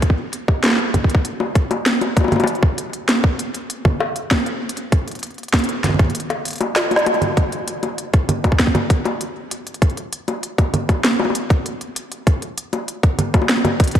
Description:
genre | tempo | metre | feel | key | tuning
IDM | 98 BPM | 4/4 | straight | none | none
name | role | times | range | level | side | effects
electronic kick drum | drums | 0.0-14.0 s | none | -17 LUFS | equal | overdrive
organic electronic drum kit | drums | 0.0-14.0 s | bongos, congas, hi-hat, snare drum | -19 LUFS | equal | overdrive
room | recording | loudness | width
moderate lush hall reverb, RT60 2.6 s | dark, warm production | -16 LUFS | side -10 dB against mid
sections
0.0-7.4 A section; 7.4-14.0 B section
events
kick drops out 6.1-7.4; drum fill 6.8-7.4; band accent 7.0-7.3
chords
none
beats
| 0.02 0.64 1.25 1.86 | 2.47 3.08 3.70 4.31 | 4.92 5.53 6.15 6.76 | 7.37 7.98 8.60 9.21 | 9.82 10.43 11.04 11.66 | 12.27 12.88 13.49

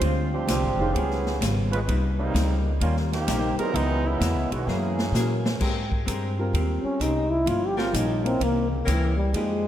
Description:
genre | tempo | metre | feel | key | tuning
jazz, big band swing | 129 BPM | 4/4 | swing 66% on 8ths | Ab major | A4 = 440 Hz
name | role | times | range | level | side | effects
vintage hollow-body jazz guitar | accompaniment | 0.0-9.7 s | G2 to Bb4 | -31 LUFS | left 3 dB | lush chorus
warm concert grand piano | accompaniment | 0.0-9.7 s | D3 to Bb4 | -33 LUFS | right 1 dB | lush chorus
upright bass | bass | 0.0-9.7 s | F1 to Bb2 | -26 LUFS | equal | none
swinging big-band drum kit | drums | 0.0-9.5 s | crash cymbal, hi-hat, kick drum, ride cymbal, snare drum | -31 LUFS | equal | none
bright trombone section | second line | 0.3-5.5 s | Eb3 to Cb5 | -28 LUFS | right 2 dB | tape echo
clear saxophone section | sustained chords | 5.6-9.1 s | E3 to Bb4 | -35 LUFS | left 2 dB | none
breathy trombone | melody | 6.8-9.7 s | Db3 to G4 | -25 LUFS | equal | none
room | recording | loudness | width
wet lush hall reverb, RT60 1.8 s, studio reverb | dreamy mix soaked in reverb | -22 LUFS | side -11 dB against mid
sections
0.0-5.6 A section; 5.6-9.7 B section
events
trombone section solo 0.0-5.6; drum fill 4.7-5.6; trombone solo 5.6-9.7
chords
0.0 Dm7b5; 0.9 Db7#11; 1.9 Cm7; 3.7 Dbm7; 4.7 Gb9; 5.6 Abmaj9; 7.5 Gm7b5; 8.4 C7b9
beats
| 0.01 0.48 0.94 1.41 | 1.88 2.34 2.81 3.27 | 3.74 4.21 4.67 5.14 | 5.60 6.07 6.53 7.00 | 7.46 7.93 8.39 8.86 | 9.32

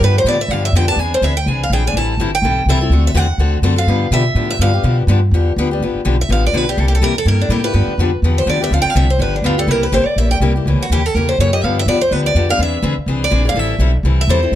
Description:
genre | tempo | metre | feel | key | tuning
acoustic string swing (jazz manouche) | 248 BPM | 4/4 | swing 57% on 8ths | G mixolydian | A4 = 440 Hz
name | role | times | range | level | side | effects
picked steel-string acoustic guitar | melody | 0.0-14.6 s | D4 to A5 | -18 LUFS | right 2 dB | plate reverb
picked steel-string acoustic guitar | accompaniment | 0.0-14.6 s | C3 to A4 | -20 LUFS | left 4 dB | none
upright bass | bass | 0.0-14.6 s | G1 to B2 | -15 LUFS | equal | none
room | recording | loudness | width
light reverb | none | -13 LUFS | side -12 dB against mid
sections
0.0-5.8 A section; 5.8-14.6 A section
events
steel-string acoustic guitar solo 0.0-5.8, 5.8-14.6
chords
0.0 G7; 1.0 Eaug7; 1.9 Am7; 2.9 D7; 3.9 G7; 6.8 C7; 7.7 G7; 8.7 Dm7; 9.2 G7; 9.7 C7; 10.7 C#dim7; 11.6 G7; 12.6 Eaug7; 13.6 Am7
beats
| 0.01 0.25 0.49 0.73 | 0.98 1.22 1.46 1.70 | 1.94 2.18 2.43 2.67 | 2.91 3.15 3.39 3.63 | 3.88 4.12 4.36 4.60 | 4.84 5.08 5.33 5.57 | 5.81 6.05 6.29 6.54 | 6.78 7.02 7.26 7.50 | 7.75 7.99 8.23 8.47 | 8.72 8.96 9.20 9.44 | 9.69 9.93 10.17 10.41 | 10.65 10.90 11.14 11.38 | 11.62 11.87 12.11 12.35 | 12.59 12.83 13.08 13.32 | 13.56 13.80 14.04 14.29 | 14.53

